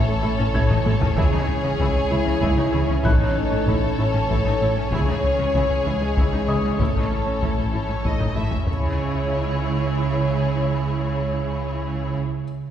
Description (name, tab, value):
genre	cinematic, hybrid orchestral and electronic film score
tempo	64 BPM (dotted quarters)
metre	6/8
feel	straight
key	C# minor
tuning	A4 = 440 Hz
part	warm symphonic violin section	melody	0.0-12.2 s	C#5 to E5	-31 LUFS	left 3 dB	none
part	warm symphonic violin section	second line	0.0-12.2 s	G#4 to A4	-30 LUFS	left 3 dB	none
part	clear trombone section	sustained chords	0.0-12.1 s	E3 to C#4	-35 LUFS	right 4 dB	none
part	mellow French horn section	sustained chords	0.0-12.2 s	G#3 to E4	-28 LUFS	left 2 dB	none
part	phased analog pad	sustained chords	0.0-12.2 s	E3 to C#5	-32 LUFS	equal	phaser, chorus
part	plucky analog bass	riff	0.0-8.6 s	C#2 to A3	-28 LUFS	left 2 dB	none
part	punchy sub bass	bass	0.0-12.2 s	A1 to C#2	-29 LUFS	equal	none
part	felt-muted upright piano	texture	0.0-8.7 s	D#5 to G#6	-35 LUFS	left 2 dB	none
part	warm symphonic viola section	accompaniment	0.2-12.1 s	C#4 to E4	-33 LUFS	equal	none
part	rich symphonic cello section	bass	0.2-12.2 s	A2 to C#3	-28 LUFS	right 4 dB	none
part	warm symphonic double bass section	bass	0.2-12.1 s	A1 to C#2	-28 LUFS	right 2 dB	none
part	taiko ensemble	drums	0.6-8.8 s	none	-25 LUFS	equal	none
room	wet scoring stage reverb, RT60 1.7 s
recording	heard from further back in the room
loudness	-19 LUFS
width	side -10 dB against mid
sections	0.0-8.7 A section; 8.7-12.4 B section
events	drum fill 0.7-1.2, 8.2-8.7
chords	0.0 A; 1.2 C#m; 3.0 A; 4.9 C#m; 6.8 A; 8.7 C#m